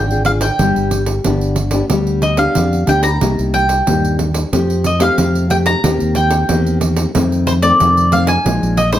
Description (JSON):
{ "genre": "samba and choro", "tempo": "92 BPM", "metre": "4/4", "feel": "straight", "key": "C minor", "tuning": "A4 = 440 Hz", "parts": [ { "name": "mandolin", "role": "melody", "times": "0.0-9.0 s", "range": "C5 to Bb5", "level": "-16 LUFS", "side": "equal", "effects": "none" }, { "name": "nylon-string guitar", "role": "accompaniment", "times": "0.0-9.0 s", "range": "F2 to Ab4", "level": "-18 LUFS", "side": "left 3 dB", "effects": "none" }, { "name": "fingered electric bass", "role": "bass", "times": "0.0-9.0 s", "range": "G1 to F2", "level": "-17 LUFS", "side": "equal", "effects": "none" }, { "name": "pandeiro", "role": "percussion", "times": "0.1-9.0 s", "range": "none", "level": "-21 LUFS", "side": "right 4 dB", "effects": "none" } ], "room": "light reverb", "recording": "none", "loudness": "-12 LUFS", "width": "side -12 dB against mid", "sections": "0.0-9.0 A section", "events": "none", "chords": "0.0 Ddim; 0.6 G; 3.2 Cm7; 4.5 Fadd9; 5.8 Cm7/Eb; 7.1 F7; 8.5 Bb7sus4" }